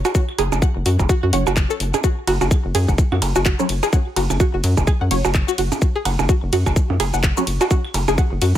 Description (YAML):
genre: minimal techno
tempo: 127 BPM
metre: 4/4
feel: swing 58% on 16ths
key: unclear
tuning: A4 = 439 Hz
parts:
  - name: string-like resonator pluck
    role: riff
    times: 0.0-8.5 s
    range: F#4 to F#5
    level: -23 LUFS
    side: equal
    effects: chorus, sidechain pumping, tape echo
  - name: rubbery square bass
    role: bass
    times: 0.0-8.6 s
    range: F#1 to F#2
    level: -20 LUFS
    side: equal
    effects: sidechain pumping
  - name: electronic kick drum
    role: drums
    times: 0.1-8.6 s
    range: none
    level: -18 LUFS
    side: equal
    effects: none
  - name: garage drum kit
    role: drums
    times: 0.1-8.6 s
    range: handclaps, hi-hat, ride cymbal, shaker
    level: -26 LUFS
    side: left 2 dB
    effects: none
  - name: percussion blips and claves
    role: percussion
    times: 0.1-8.6 s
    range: none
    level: -26 LUFS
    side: right 5 dB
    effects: overdrive, ping-pong delay
  - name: filtered dub chord stab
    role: stabs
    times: 1.3-7.4 s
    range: F#3 to C#5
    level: -26 LUFS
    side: right 1 dB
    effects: phaser, ensemble chorus, ping-pong delay
room: digital ambience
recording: none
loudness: -16 LUFS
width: side -12 dB against mid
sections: 0.0-8.6 A section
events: none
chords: 0.0 F#5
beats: | 0.15 0.62 1.09 1.57 | 2.04 2.51 2.98 3.46 | 3.93 4.40 4.87 5.34 | 5.82 6.29 6.76 7.24 | 7.71 8.18